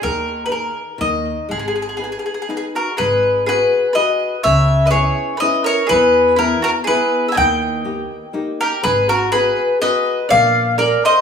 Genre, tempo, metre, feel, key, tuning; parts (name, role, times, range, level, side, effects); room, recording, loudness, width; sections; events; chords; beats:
italian folk, Italian serenade; 123 BPM; 3/4; swing 53% on 8ths; G# minor; A4 = 440 Hz
mandolin; melody; 0.0-11.2 s; G#4 to G#5; -16 LUFS; left 2 dB; tape echo
flamenco guitar; accompaniment; 0.0-11.2 s; C#3 to D5; -25 LUFS; left 3 dB
upright bass; bass; 0.0-10.9 s; G#1 to E2; -22 LUFS; equal
mandolin; second line; 2.8-11.2 s; E4 to E5; -21 LUFS; right 4 dB
light reverb, small room reverb; rough home demo mix, studio reverb; -14 LUFS; side -7 dB against mid
0.0-3.0 A section; 3.0-11.2 A section
0.0 D#sus4; 1.0 N.C.; 1.5 G#m; 3.0 G#m7; 4.4 C#m7; 5.9 E; 7.4 D#; 8.8 G#m7; 10.3 A#7
| 0.03 0.52 1.01 | 1.50 1.99 2.49 | 2.98 3.47 3.96 | 4.45 4.93 5.42 | 5.91 6.39 6.88 | 7.36 7.85 8.34 | 8.83 9.32 9.81 | 10.30 10.78